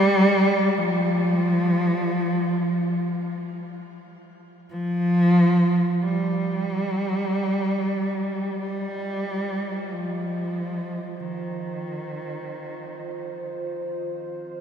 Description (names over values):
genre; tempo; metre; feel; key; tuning
dark ambient drone; free time; none; none; C minor; A4 = 440 Hz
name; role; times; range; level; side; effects
dark cello; melody; 0.0-13.8 s; Eb3 to G3; -22 LUFS; equal; shimmer reverb, diffuse ambient delay
dark analog pad; sustained chords; 6.0-14.6 s; F4 to Eb5; -35 LUFS; right 2 dB; chorus, shimmer reverb
room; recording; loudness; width
wet cathedral reverb, RT60 5.2 s; in a vast, echoing space; -22 LUFS; side -8 dB against mid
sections
0.0-6.0 A section; 6.0-14.6 B section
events
fade-in on analog synth pad 6.0-14.6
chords
0.0 N.C.; 6.0 Cm